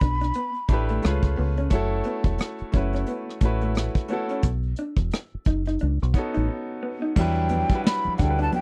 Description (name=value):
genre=R&B, neo-soul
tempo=88 BPM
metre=4/4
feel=swing 59% on 16ths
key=E dorian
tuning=A4 = 440 Hz
part: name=mellow hollow jazz flute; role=melody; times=0.0-1.0, 7.2-8.6 s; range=F#5 to B5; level=-30 LUFS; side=equal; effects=slapback echo
part: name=electric guitar through a small old amp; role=second line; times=0.0-8.6 s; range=A3 to D#4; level=-33 LUFS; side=equal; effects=none
part: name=deep dub fingered electric bass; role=bass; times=0.0-8.5 s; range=E1 to E2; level=-27 LUFS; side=equal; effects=none
part: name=vintage brush drum kit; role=drums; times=0.0-8.6 s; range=crash cymbal, hi-hat, kick drum, rim click, snare drum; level=-25 LUFS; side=equal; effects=none
part: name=clear grand piano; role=accompaniment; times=0.7-8.6 s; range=F#3 to B4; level=-31 LUFS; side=equal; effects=none
part: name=congas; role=percussion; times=7.2-8.6 s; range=none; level=-36 LUFS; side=equal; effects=none
room=little or no reverb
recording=dry, close 1970s-style studio recording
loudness=-25 LUFS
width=mono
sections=0.0-7.2 A section; 7.2-8.6 B section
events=break 6.5-7.2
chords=0.0 A9sus4; 1.0 C#7b13; 1.7 F#m7; 4.4 B7; 7.2 Em7